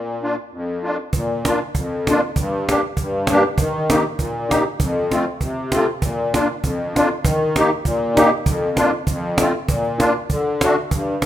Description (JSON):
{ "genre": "alpine folk, alpine dance band", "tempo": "98 BPM", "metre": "2/4", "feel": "straight", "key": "Bb major", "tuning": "A4 = 440 Hz", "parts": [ { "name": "musette accordion", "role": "accompaniment", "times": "0.0-11.3 s", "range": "F2 to G4", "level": "-18 LUFS", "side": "left 1 dB", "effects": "none" }, { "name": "cajon", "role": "drums", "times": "1.1-11.3 s", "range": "none", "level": "-22 LUFS", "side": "right 2 dB", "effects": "none" } ], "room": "moderate recital hall reverb, RT60 1.5 s", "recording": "minimal, uncompressed stereo recording", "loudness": "-17 LUFS", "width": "side -12 dB against mid", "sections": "0.0-1.1 A section; 1.1-10.9 A section", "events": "none", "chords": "0.0 Bb; 2.4 Gm; 3.6 Eb; 4.8 F; 6.0 Bb; 7.3 Eb; 8.5 Bb/F; 9.1 F; 9.7 Bb; 10.3 D" }